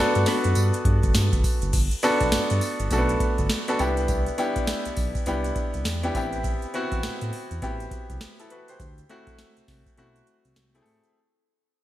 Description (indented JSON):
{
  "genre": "R&B, new jack swing",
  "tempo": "102 BPM",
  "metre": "4/4",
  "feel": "swing 61% on 16ths",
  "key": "G major",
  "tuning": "A4 = 441 Hz",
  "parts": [
    { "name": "bright concert grand piano", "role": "accompaniment", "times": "0.0-11.2 s", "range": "A3 to C5", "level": "-25 LUFS", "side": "equal", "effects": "none" },
    { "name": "smooth synth bass", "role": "bass", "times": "0.0-11.0 s", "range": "F#1 to A2", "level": "-26 LUFS", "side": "equal", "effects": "none" },
    { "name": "tube shaker", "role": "percussion", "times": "0.1-11.1 s", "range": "none", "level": "-44 LUFS", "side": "right 9 dB", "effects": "none" },
    { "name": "booming analog drum machine", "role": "drums", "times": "0.2-11.1 s", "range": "crash cymbal, hi-hat, kick drum, snare drum, tambourine", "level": "-26 LUFS", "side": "equal", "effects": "overdrive, gated reverb" }
  ],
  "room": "moderate lush hall reverb, RT60 2.4 s",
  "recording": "bright 1980s-style digital production",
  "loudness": "-22 LUFS",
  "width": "side -14 dB against mid",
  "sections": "0.0-1.7 A section; 1.7-11.1 B section",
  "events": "fade-out 1.7-11.1; break 10.0-11.1",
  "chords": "0.0 Gmaj7; 1.7 Gmaj9; 3.8 Cmaj9; 6.1 Am9; 8.8 D7 (rootless)"
}